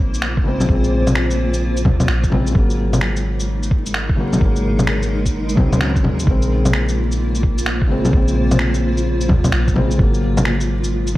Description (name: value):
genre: future garage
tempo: 129 BPM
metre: 4/4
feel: swing 65% on 16ths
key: Bb minor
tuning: A4 = 440 Hz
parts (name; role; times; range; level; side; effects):
- felt-muted upright piano; accompaniment; 0.0-11.2 s; Db3 to Db4; -22 LUFS; left 1 dB; sidechain pumping, tape echo
- granular cloud pad; sustained chords; 0.0-11.2 s; Ab3 to C5; -25 LUFS; equal; built-in reverb, sidechain pumping
- soft 808-style bass; bass; 0.0-11.2 s; Ab1 to Eb2; -20 LUFS; equal; sidechain pumping
- electronic shaker, finger snaps and bongos; drums; 0.1-11.1 s; none; -20 LUFS; equal; none
- electronic kick drum; drums; 0.4-11.2 s; none; -18 LUFS; equal; none
room: light reverb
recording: vinyl crackle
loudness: -15 LUFS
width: side -16 dB against mid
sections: 0.0-11.2 A section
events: none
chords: 0.0 Bbm7; 2.5 Ab9sus4; 6.3 Bbm7; 10.0 Ab9sus4